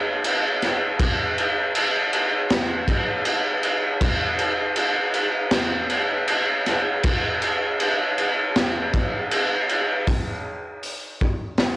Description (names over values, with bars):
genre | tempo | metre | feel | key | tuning
rock | 79 BPM | 4/4 | straight | none | none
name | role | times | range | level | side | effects
raw garage drum kit | drums | 0.2-11.8 s | crash cymbal, hi-hat, kick drum, snare drum | -20 LUFS | equal | none
room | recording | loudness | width
light reverb | home recording on cassette | -19 LUFS | side -18 dB against mid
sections
0.0-10.1 A section; 10.1-11.8 B section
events
none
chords
none